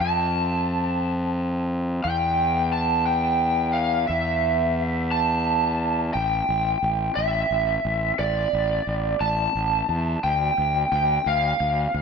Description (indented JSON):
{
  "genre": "post-rock",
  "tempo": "59 BPM (dotted quarters)",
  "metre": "6/8",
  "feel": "straight",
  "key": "unclear",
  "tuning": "A4 = 441 Hz",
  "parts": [
    { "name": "lead guitar through a small cranked amp", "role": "melody", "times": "0.0-12.0 s", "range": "D5 to A5", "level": "-22 LUFS", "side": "right 1 dB", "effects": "overdrive, wide subtle chorus, ping-pong delay" },
    { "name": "fuzz fingered electric bass", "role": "bass", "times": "0.0-12.0 s", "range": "A1 to F2", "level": "-25 LUFS", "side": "equal", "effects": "overdrive" }
  ],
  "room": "wet lush hall reverb, RT60 1.7 s",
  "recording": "dreamy mix soaked in reverb",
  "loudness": "-21 LUFS",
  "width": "side -5 dB against mid",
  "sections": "0.0-6.2 A section; 6.2-12.0 B section",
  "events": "none",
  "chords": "0.0 F; 2.1 Emadd11; 6.2 A5; 10.2 Dm"
}